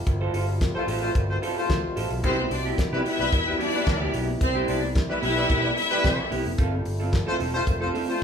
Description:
disco; 110 BPM; 4/4; straight; C major; A4 = 437 Hz
warm French horn section; sustained chords; 0.0-8.2 s; B2 to F4; -34 LUFS; left 1 dB
electric guitar through a small old amp; accompaniment; 0.1-8.2 s; B3 to C5; -29 LUFS; right 2 dB
fingered electric bass; bass; 0.1-7.9 s; E1 to C3; -30 LUFS; equal
damped 70s drum kit; drums; 0.1-8.1 s; hi-hat, kick drum, snare drum; -27 LUFS; equal
cowbell; percussion; 0.1-7.8 s; -40 LUFS; left 6 dB
clear horn section; stabs; 0.8-8.2 s; G3 to C5; -28 LUFS; left 1 dB
clear studio string section; second line; 2.2-6.3 s; C4 to E5; -27 LUFS; left 2 dB
wet large studio reverb, RT60 0.9 s; band playing live in one room; -22 LUFS; side -7 dB against mid
0.0-8.2 A section
0.0 G9sus4; 2.2 Cmaj7; 6.6 G9sus4

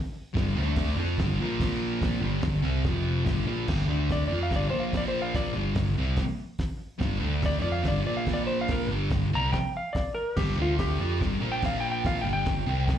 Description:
garage rock duo or trio; 144 BPM; 4/4; straight; A4 = 441 Hz
thick fuzz guitar; riff; 0.3-12.9 s; F2 to F4; -28 LUFS; equal; distortion, slapback echo
hollow-body short-scale picked electric bass; bass; 0.3-12.9 s; F1 to F2; -30 LUFS; equal; tube saturation
cloth-damped thuddy drum kit; drums; 0.4-13.0 s; crash cymbal, hi-hat, kick drum, snare drum; -30 LUFS; equal
clean lap steel guitar; melody; 4.1-13.0 s; F4 to Bb5; -30 LUFS; left 1 dB; slapback echo, tape echo
studio reverb; live gig heard through the venue's PA, club reverb; -25 LUFS; side -10 dB against mid
0.0-3.7 A section; 3.7-13.0 B section
electric slide guitar solo 3.7-13.0
0.0 G5; 0.6 D5; 1.0 G5; 1.4 Bb5; 2.2 G5; 2.8 F5; 3.3 G5; 3.9 D5; 4.3 G5; 4.7 Bb5; 5.6 G5; 7.2 D5; 7.6 G5; 8.1 Bb5; 8.9 G5; 10.6 D5; 11.0 G5; 11.4 Bb5; 12.2 G5

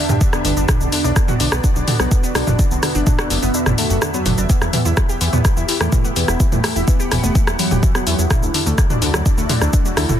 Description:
melodic techno; 126 BPM; 4/4; straight; E minor; A4 = 444 Hz
wide unison lead; melody; 0.0-10.2 s; F#3 to E4; -24 LUFS; right 1 dB; sidechain pumping, tape echo
lush unison pad; sustained chords; 0.0-10.2 s; A3 to F#5; -27 LUFS; right 1 dB; chorus, phaser, vintage 12-bit sampler grit, sidechain pumping
overtone-sweeping drone; drone; 0.0-10.2 s; E2; -31 LUFS; equal
warbly dusty pluck; arpeggios; 0.1-10.1 s; D3 to G5; -25 LUFS; left 1 dB; chorus, sidechain pumping, ping-pong delay
fat analog bass; bass; 0.1-10.2 s; D1 to G2; -20 LUFS; equal; sidechain pumping
house drum kit; drums; 0.1-10.2 s; hi-hat, rim click, shaker, toms; -20 LUFS; equal; soft clipping on snare
electronic kick drum; drums; 0.2-9.8 s; -16 LUFS; equal; overdrive
little or no reverb; dense, heavily limited modern master; -14 LUFS; side -10 dB against mid
0.0-10.2 A section
kick drops out 3.5-4.5
0.0 G; 0.7 Bm; 4.5 Em; 8.3 Dadd9

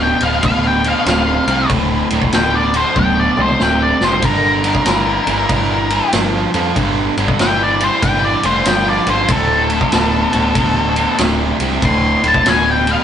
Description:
blues rock power trio and southern rock; 95 BPM; 4/4; swing 65% on 8ths; D minor; A4 = 442 Hz
octave-fuzz lead guitar; melody; 0.0-13.0 s; A4 to C6; -16 LUFS; left 3 dB; distortion
cranked stack guitar; riff; 0.0-13.0 s; D2 to F3; -17 LUFS; right 1 dB; overdrive
picked electric bass; bass; 0.0-13.0 s; D1 to F2; -21 LUFS; equal
vintage drum kit; drums; 0.2-13.0 s; kick drum, ride cymbal, snare drum, toms; -18 LUFS; equal
moderate small room reverb, RT60 0.5 s; rough rehearsal-room recording, nothing above 10.3 kHz; -12 LUFS; side -9 dB against mid
0.0-13.0 A section
drum fill 3.0-4.2
0.0 Dm7; 4.2 Gm7; 9.3 D5

